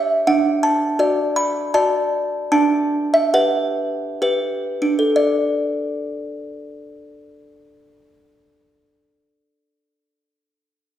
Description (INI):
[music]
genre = classical, lullaby for music box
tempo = 62-85 BPM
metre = 3/4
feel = straight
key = D major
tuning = A4 = 440 Hz
[part]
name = music box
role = solo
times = 0.0-10.1 s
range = D4 to B5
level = -17 LUFS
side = equal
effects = none
[sound]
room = wet recital hall reverb, RT60 1.6 s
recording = recorded in a church or concert hall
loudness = -17 LUFS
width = side -11 dB against mid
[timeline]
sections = 0.0-5.2 A section; 5.2-10.9 B section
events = slowing down 0.0-5.2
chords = 0.3 D; 2.5 G/D; 5.2 D5